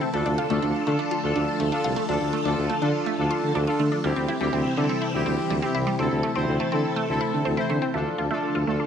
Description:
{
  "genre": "pop",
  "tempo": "123 BPM",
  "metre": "4/4",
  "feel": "straight",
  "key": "D minor",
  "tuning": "A4 = 440 Hz",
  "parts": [
    { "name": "analog synth brass", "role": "accompaniment", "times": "0.0-8.9 s", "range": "C4 to C5", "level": "-26 LUFS", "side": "equal", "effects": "chorus" },
    { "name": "phased string machine", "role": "sustained chords", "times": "0.0-8.9 s", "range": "C3 to A4", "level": "-30 LUFS", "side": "equal", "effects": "ensemble chorus, phaser" },
    { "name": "resonant blip pluck", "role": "arpeggios", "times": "0.0-8.9 s", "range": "G3 to F4", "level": "-30 LUFS", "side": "equal", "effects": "phaser, digital delay" },
    { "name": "warm tuba", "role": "bass", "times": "0.1-8.8 s", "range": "C2 to D3", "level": "-27 LUFS", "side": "equal", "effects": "none" }
  ],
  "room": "moderate plate reverb, RT60 2.5 s",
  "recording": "none",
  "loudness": "-22 LUFS",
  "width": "side -8 dB against mid",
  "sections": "0.0-7.9 A section",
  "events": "none",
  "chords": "0.1 Dm; 4.0 C/D; 6.0 Am/D; 7.9 Dm"
}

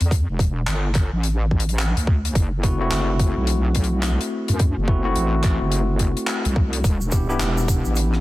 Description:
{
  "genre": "glitch hop",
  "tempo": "107 BPM",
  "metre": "4/4",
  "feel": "swing 61% on 16ths",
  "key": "unclear",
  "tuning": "A4 = 439 Hz",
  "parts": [
    { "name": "wobble bass", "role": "bass", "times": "0.0-8.2 s", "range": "E1 to F#2", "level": "-21 LUFS", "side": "equal", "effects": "chorus, overdrive" },
    { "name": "damped 70s drum kit", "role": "drums", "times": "0.0-8.2 s", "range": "handclaps, hi-hat, rim click", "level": "-28 LUFS", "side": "left 2 dB", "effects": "none" },
    { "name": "electronic kick drum", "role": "drums", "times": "0.1-7.8 s", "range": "none", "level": "-20 LUFS", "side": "equal", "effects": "none" },
    { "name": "tine electric piano", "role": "stabs", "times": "2.6-8.2 s", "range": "A3 to G4", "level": "-25 LUFS", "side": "left 1 dB", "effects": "medium stereo tremolo, sidechain pumping, tape echo" },
    { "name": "egg shaker", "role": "percussion", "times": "6.8-8.1 s", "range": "none", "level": "-34 LUFS", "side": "right 4 dB", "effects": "none" }
  ],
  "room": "studio reverb",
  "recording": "dense, heavily limited modern master, vinyl crackle",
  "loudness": "-18 LUFS",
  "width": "side -17 dB against mid",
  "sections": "0.0-8.2 A section",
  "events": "none",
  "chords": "0.0 Em7; 2.4 F#m7b5; 6.8 Em7"
}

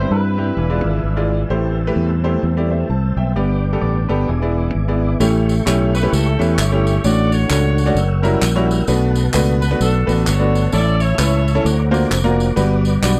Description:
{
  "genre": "uptempo gospel",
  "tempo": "130 BPM",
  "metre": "4/4",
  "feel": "swing 59% on 8ths",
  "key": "unclear",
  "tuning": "A4 = 442 Hz",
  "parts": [
    { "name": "clean electric guitar", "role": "melody", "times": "0.0-1.3 s", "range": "B4 to C5", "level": "-32 LUFS", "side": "equal", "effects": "none" },
    { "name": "clear saxophone section", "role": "melody", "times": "0.0-1.3, 5.9-11.9 s", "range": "C#4 to D5", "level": "-27 LUFS", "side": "equal", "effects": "none" },
    { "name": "bright grand piano", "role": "accompaniment", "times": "0.0-13.2 s", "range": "G2 to A5", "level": "-22 LUFS", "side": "equal", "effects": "none" },
    { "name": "dark studio string section", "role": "sustained chords", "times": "0.0-5.2 s", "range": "D3 to D4", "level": "-32 LUFS", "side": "equal", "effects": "none" },
    { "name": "mellow tonewheel organ", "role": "sustained chords", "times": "0.0-13.2 s", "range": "C4 to E6", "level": "-31 LUFS", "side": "equal", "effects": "fast rotary speaker, chorus vibrato" },
    { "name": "fingered electric bass", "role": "bass", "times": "0.0-13.2 s", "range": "E1 to G2", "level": "-19 LUFS", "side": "equal", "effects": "none" },
    { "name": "clean electric guitar", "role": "second line", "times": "3.8-5.0 s", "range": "G#4 to D5", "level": "-34 LUFS", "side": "equal", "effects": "none" },
    { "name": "tambourine and handclaps", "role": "percussion", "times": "5.2-13.2 s", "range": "none", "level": "-29 LUFS", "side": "equal", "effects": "none" }
  ],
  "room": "small room ambience",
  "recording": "dry, close 1970s-style studio recording",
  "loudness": "-17 LUFS",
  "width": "mono",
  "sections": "0.0-5.2 A section; 5.2-13.2 B section",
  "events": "none",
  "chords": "0.0 Cmaj7/G; 0.6 E7b9; 1.5 Am7; 3.4 G; 4.3 E7; 5.2 A7; 7.0 Dmaj7/A; 8.0 F#7b9; 8.9 Bm7; 10.7 A; 11.6 D7alt; 12.6 Gmaj7"
}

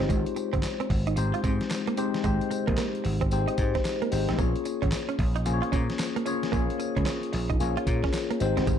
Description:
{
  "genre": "R&B, new jack swing",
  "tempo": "112 BPM",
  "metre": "4/4",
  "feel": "swing 63% on 16ths",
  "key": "Bb dorian",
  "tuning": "A4 = 440 Hz",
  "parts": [
    { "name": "tine electric piano", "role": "accompaniment", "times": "0.0-8.8 s", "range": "Ab3 to Db5", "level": "-29 LUFS", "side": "left 5 dB", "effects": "phaser" },
    { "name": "direct-recorded clean electric guitar", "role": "riff", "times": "0.0-8.8 s", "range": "Ab3 to F4", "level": "-33 LUFS", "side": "right 8 dB", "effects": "ensemble chorus" },
    { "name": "vintage slap bass", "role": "bass", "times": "0.0-8.8 s", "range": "G1 to Bb2", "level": "-28 LUFS", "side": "equal", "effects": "none" },
    { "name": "dusty soul sampler-style drum kit", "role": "drums", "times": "0.0-8.8 s", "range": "handclaps, hi-hat, kick drum, snare drum, tambourine", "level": "-30 LUFS", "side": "equal", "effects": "none" }
  ],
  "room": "light reverb, digital ambience",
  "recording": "dark, warm production",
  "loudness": "-24 LUFS",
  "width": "side -9 dB against mid",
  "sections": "0.0-8.8 A section",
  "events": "none",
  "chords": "0.0 Abmaj7; 4.4 Bbm7"
}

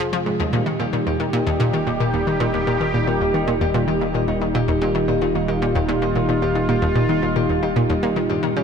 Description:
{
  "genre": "ambient, sequencer-driven space music",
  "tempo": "112 BPM",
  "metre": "4/4",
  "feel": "straight",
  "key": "unclear",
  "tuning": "A4 = 445 Hz",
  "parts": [
    { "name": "sweeping resonant pad", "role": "sustained chords", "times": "0.0-8.6 s", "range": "Bb2 to Ab4", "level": "-22 LUFS", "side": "right 1 dB", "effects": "chorus" },
    { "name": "analog pluck", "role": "riff", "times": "0.0-8.6 s", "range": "Eb2 to F3", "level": "-21 LUFS", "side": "equal", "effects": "chorus, ping-pong delay" },
    { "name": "round analog bass", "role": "bass", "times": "0.0-8.6 s", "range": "Eb1 to F1", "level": "-34 LUFS", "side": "equal", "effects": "none" },
    { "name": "concert harp", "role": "arpeggios", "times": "0.4-8.6 s", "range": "Eb4 to Eb5", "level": "-25 LUFS", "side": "left 2 dB", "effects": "auto-pan, ping-pong delay" }
  ],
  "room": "moderate huge ambient reverb, RT60 8.4 s",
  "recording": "none",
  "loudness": "-18 LUFS",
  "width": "side -6 dB against mid",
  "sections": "0.0-8.6 A section",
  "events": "none",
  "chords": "0.4 Eb"
}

